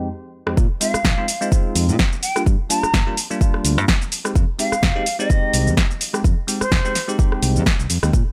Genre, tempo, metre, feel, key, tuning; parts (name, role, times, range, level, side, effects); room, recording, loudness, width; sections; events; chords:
filtered disco house; 127 BPM; 4/4; swing 56% on 16ths; F dorian; A4 = 435 Hz
bell-like tine electric piano; accompaniment; 0.0-8.1 s; F2 to G4; -28 LUFS; equal; phaser, sidechain pumping, low-pass filter
house drum kit; drums; 0.5-8.2 s; hi-hat, rim click, shaker, snare drum; -24 LUFS; equal; studio ambience, sidechain pumping on perc, sidechain pumping on hats
fingered electric bass; bass; 0.6-8.2 s; F1 to Bb2; -23 LUFS; equal; sidechain pumping, low-pass filter
electronic kick drum; drums; 0.6-8.2 s; -20 LUFS; equal; studio ambience
silver concert flute; melody; 0.8-7.1 s; C5 to Bb5; -26 LUFS; equal; sidechain pumping, low-pass filter
little or no reverb; -19 LUFS; mono
0.6-8.3 A section
drop 0.6-8.3
0.0 Fm7; 0.6 Bb9sus4; 2.2 Gm7; 4.1 Fm7